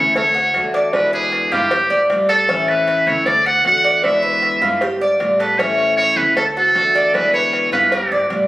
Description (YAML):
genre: latin, Cuban son and guajira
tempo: 155 BPM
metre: 4/4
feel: straight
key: A major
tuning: A4 = 438 Hz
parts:
  - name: trumpet with metal mute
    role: melody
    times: 0.0-8.3 s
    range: G4 to F#5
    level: -16 LUFS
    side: right 1 dB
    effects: none
  - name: picked steel-string acoustic guitar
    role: accompaniment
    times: 0.0-8.5 s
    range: B2 to F#4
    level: -23 LUFS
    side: left 2 dB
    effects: none
  - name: Cuban tres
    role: arpeggios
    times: 0.0-8.5 s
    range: C#4 to D5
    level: -20 LUFS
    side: equal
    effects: none
  - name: upright bass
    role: bass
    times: 0.0-8.5 s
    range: D2 to A2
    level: -34 LUFS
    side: right 1 dB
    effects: none
  - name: cowbell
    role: percussion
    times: 0.2-8.5 s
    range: none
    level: -26 LUFS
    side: left 1 dB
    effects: none
room: wet large studio reverb, RT60 1.5 s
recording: recorded on a phone in the room, studio reverb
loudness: -13 LUFS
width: side -16 dB against mid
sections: 0.0-8.5 A section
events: none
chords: 0.2 D; 0.9 E7; 1.7 G7; 2.5 A; 3.3 D; 4.0 E7; 4.8 G7; 5.6 A; 6.4 D; 7.1 E7; 7.9 G7